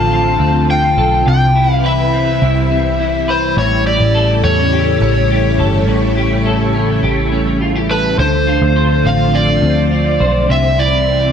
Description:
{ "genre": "dream pop", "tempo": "104 BPM", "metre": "4/4", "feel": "straight", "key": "unclear", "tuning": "A4 = 440 Hz", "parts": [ { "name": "overdriven slide guitar", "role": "melody", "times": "0.0-11.3 s", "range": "B4 to A5", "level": "-16 LUFS", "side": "left 1 dB", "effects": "ping-pong delay" }, { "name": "string machine, full ensemble", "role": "sustained chords", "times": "0.0-11.3 s", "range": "C3 to B4", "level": "-18 LUFS", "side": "right 1 dB", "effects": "ensemble chorus" }, { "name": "clean electric guitar", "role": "arpeggios", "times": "0.0-11.3 s", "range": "A2 to C5", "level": "-17 LUFS", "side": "left 1 dB", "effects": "ensemble chorus, ping-pong delay" }, { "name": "vintage muted picked electric bass", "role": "bass", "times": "0.0-11.3 s", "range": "G1 to E2", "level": "-17 LUFS", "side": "right 1 dB", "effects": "none" } ], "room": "light reverb, digital ambience", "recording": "none", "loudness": "-11 LUFS", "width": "side -8 dB against mid", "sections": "0.0-8.2 A section; 8.2-11.3 B section", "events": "none", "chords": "0.0 Dm7; 1.3 Cmaj7; 3.6 A7; 8.2 Dm7; 10.5 C" }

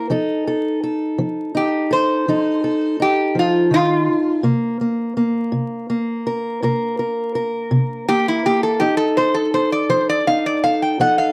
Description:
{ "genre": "acoustic country blues, solo or duo", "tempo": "55 BPM (dotted quarters)", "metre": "12/8", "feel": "straight", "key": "unclear", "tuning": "A4 = 438 Hz", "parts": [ { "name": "metal-body resonator slide guitar", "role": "melody", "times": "0.0-11.3 s", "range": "E4 to G5", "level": "-20 LUFS", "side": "equal", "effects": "slapback echo" }, { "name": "fingerpicked steel-string acoustic guitar", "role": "accompaniment", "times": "0.0-11.3 s", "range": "C3 to Bb4", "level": "-22 LUFS", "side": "equal", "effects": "none" } ], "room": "small room ambience", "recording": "dry, close 1970s-style studio recording, vinyl crackle", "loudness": "-19 LUFS", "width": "mono", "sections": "0.0-11.3 A section", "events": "resonator guitar played with a steel bar solo 0.0-11.3", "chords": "0.1 F7; 4.4 C7(no3); 8.8 F7" }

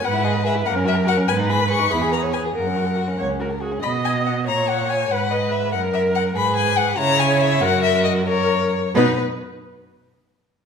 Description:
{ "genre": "quick classical-period movement for string quartet", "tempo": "94 BPM (dotted quarters)", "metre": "6/8", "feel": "straight", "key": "B major", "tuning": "A4 = 440 Hz", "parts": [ { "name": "warm violin", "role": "melody", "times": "0.0-9.2 s", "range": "B4 to C#6", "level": "-22 LUFS", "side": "left 8 dB", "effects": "none" }, { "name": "dark violin", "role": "second line", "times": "0.0-9.2 s", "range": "A#3 to D#5", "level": "-26 LUFS", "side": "left 2 dB", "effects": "none" }, { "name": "rich viola", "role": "accompaniment", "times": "0.0-9.2 s", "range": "D#4 to D#5", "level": "-24 LUFS", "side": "right 1 dB", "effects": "none" }, { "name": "rich cello", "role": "bass", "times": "0.0-9.2 s", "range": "C#2 to C#3", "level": "-23 LUFS", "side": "right 4 dB", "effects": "none" } ], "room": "wet recital hall reverb, RT60 1.4 s", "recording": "recorded in a church or concert hall", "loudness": "-17 LUFS", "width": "side -6 dB against mid", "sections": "0.0-9.0 A section; 9.0-10.3 B section", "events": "slowing down 5.7-9.0", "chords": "0.0 E/G#; 0.7 F#; 1.3 G#m; 1.9 C#m7/E (rootless); 2.5 F#; 3.8 B; 4.5 A#m7; 5.1 G#m7; 5.7 F#; 6.4 G#m; 7.0 C#m; 7.6 F#; 9.0 B" }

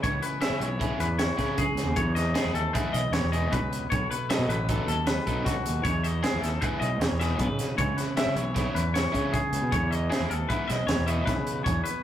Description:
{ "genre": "math rock and midwest emo", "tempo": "155 BPM", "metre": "5/4", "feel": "straight", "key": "E major", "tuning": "A4 = 443 Hz", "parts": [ { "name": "twelve-string electric guitar", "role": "accompaniment", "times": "0.0-12.0 s", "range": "E2 to A4", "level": "-35 LUFS", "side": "right 2 dB", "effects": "none" }, { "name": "twangy electric guitar", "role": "arpeggios", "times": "0.0-12.0 s", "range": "F#4 to E5", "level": "-30 LUFS", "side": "left 2 dB", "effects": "spring reverb" }, { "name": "fuzz fingered electric bass", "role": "bass", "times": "0.0-11.8 s", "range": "A1 to C#3", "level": "-29 LUFS", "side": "equal", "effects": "overdrive" }, { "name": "crisp fusion drum kit", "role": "drums", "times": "0.0-11.9 s", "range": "hi-hat, kick drum, snare drum", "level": "-30 LUFS", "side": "right 1 dB", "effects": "none" }, { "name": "overdriven electric guitar", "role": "riff", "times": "0.4-11.3 s", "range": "C#3 to A4", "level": "-33 LUFS", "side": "left 1 dB", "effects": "none" } ], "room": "light reverb", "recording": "rough rehearsal-room recording", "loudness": "-24 LUFS", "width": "side -11 dB against mid", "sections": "0.0-12.0 A section", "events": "none", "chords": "0.0 Emaj7; 3.9 B7; 5.8 Emaj7; 7.8 C#m7; 9.7 Emaj7" }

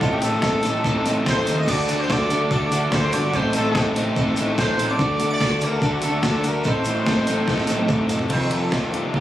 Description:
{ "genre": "indie rock", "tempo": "145 BPM", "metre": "4/4", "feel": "straight", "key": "unclear", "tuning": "A4 = 441 Hz", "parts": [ { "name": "warm trumpet", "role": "melody", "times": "0.0-9.2 s", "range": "F4 to F5", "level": "-26 LUFS", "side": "equal", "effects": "none" }, { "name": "glassy synth bell", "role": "second line", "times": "0.0-7.9 s", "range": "F5 to Eb6", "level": "-35 LUFS", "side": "right 3 dB", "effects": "chorus, phaser" }, { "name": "string machine, violas", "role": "sustained chords", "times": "0.0-8.3 s", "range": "A4 to Eb6", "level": "-36 LUFS", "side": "equal", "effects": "none" }, { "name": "raw garage guitar", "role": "riff", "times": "0.0-9.2 s", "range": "F2 to A4", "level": "-24 LUFS", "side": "left 4 dB", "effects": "overdrive" }, { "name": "twelve-string electric guitar", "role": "riff", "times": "0.0-9.2 s", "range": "G2 to A4", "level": "-26 LUFS", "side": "right 4 dB", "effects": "analog chorus, digital delay" }, { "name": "fuzz picked electric bass", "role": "bass", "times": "0.0-9.2 s", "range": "E1 to F2", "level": "-26 LUFS", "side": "equal", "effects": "overdrive" }, { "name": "gated 80s digital drum machine", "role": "drums", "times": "0.0-9.2 s", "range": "crash cymbal, hi-hat, kick drum, snare drum, toms", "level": "-26 LUFS", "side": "equal", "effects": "gated reverb, gated reverb snare, overdrive" }, { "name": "tube shaker", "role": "percussion", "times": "0.0-8.3 s", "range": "none", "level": "-39 LUFS", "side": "right 3 dB", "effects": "none" } ], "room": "little or no reverb", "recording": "recorded on a phone in the room, club reverb", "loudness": "-18 LUFS", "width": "side -13 dB against mid", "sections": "0.0-8.3 A section", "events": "drum fill 7.5-8.3", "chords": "0.0 Adim; 1.7 D; 3.3 Adim; 5.0 D; 6.7 Adim; 8.3 F7" }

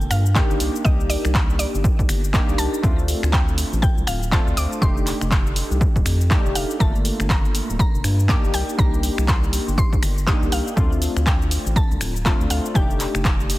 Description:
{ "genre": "deep house", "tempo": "121 BPM", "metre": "4/4", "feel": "swing 60% on 16ths", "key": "unclear", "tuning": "A4 = 440 Hz", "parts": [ { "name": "mallet-like synth pluck", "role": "melody", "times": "0.0-13.6 s", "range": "D5 to Eb6", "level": "-30 LUFS", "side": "equal", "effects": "chorus, dub echo" }, { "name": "warm analog keys", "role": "stabs", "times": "0.0-13.6 s", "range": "A3 to A4", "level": "-26 LUFS", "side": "equal", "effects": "chorus, sidechain pumping, digital delay" }, { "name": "round analog bass", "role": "bass", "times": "0.0-13.6 s", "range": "D1 to G2", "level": "-22 LUFS", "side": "equal", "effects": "sidechain pumping" }, { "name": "punchy analog drum machine", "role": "drums", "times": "0.0-13.6 s", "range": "finger snaps, handclaps, hi-hat, shaker", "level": "-27 LUFS", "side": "equal", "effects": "none" }, { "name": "electronic kick drum", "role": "drums", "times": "0.4-13.4 s", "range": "none", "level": "-20 LUFS", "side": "equal", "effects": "none" } ], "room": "little or no reverb", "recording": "dense, heavily limited modern master, vinyl crackle", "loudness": "-17 LUFS", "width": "side -17 dB against mid", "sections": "0.0-13.6 A section", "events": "none", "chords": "0.0 Gm9; 0.6 Cm9; 2.8 Dm7; 4.8 F13; 6.8 Gm9; 8.5 Cm9; 10.8 Dm7; 12.8 F13" }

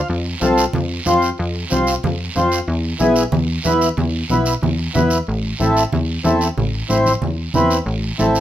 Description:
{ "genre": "latin, cumbia", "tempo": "185 BPM", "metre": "4/4", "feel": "straight", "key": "A minor from 5.3 s", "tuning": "A4 = 440 Hz", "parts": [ { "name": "mellow accordion", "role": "accompaniment", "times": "0.0-8.4 s", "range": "B3 to C5", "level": "-16 LUFS", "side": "equal", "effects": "none" }, { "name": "plucky analog bass", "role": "bass", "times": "0.0-8.4 s", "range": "A1 to F2", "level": "-20 LUFS", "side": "equal", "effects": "none" }, { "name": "guiro", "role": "percussion", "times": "0.1-8.4 s", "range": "none", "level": "-28 LUFS", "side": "right 5 dB", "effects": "none" }, { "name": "congas", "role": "percussion", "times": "0.4-8.4 s", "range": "none", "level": "-23 LUFS", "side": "right 1 dB", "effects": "none" } ], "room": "moderate studio reverb, RT60 0.6 s", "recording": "minimal, uncompressed stereo recording", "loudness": "-16 LUFS", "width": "side -12 dB against mid", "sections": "0.0-5.3 A section; 5.3-8.4 B section", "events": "none", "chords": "0.1 F; 2.7 E; 5.3 Am" }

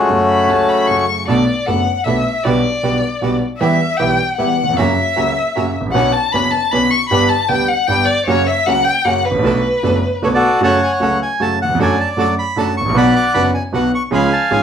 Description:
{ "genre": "tango", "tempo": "154 BPM", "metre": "3/4", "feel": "rubato", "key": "B minor, F# minor from 10.6 s", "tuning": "A4 = 440 Hz", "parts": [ { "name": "bandoneon", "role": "melody", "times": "0.0-1.1, 10.2-14.6 s", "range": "A3 to D6", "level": "-15 LUFS", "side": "left 1 dB", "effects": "slapback echo" }, { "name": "warm concert grand piano", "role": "accompaniment", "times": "0.0-14.6 s", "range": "F#1 to G4", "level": "-17 LUFS", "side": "right 2 dB", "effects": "none" }, { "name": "bandoneon", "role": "stabs", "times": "0.0-14.6 s", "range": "F#3 to B4", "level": "-23 LUFS", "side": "right 2 dB", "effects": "none" }, { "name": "rich violin", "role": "second line", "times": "0.3-10.4 s", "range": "B4 to C#6", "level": "-17 LUFS", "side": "left 3 dB", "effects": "none" } ], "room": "wet studio ambience, RT60 0.5 s", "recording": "band playing live in one room", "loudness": "-13 LUFS", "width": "side -8 dB against mid", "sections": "0.0-1.3 A section; 1.3-10.6 B section; 10.6-14.6 C section", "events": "violin solo 1.3-10.6", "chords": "0.1 F#m; 1.3 Bm7; 2.4 Gmaj7/B; 3.6 Em; 4.8 F#; 5.9 Bmadd9; 7.1 G; 8.3 F#; 9.4 Bm7; 10.6 F#m; 11.8 D/F#; 13.0 Bm; 14.1 C#" }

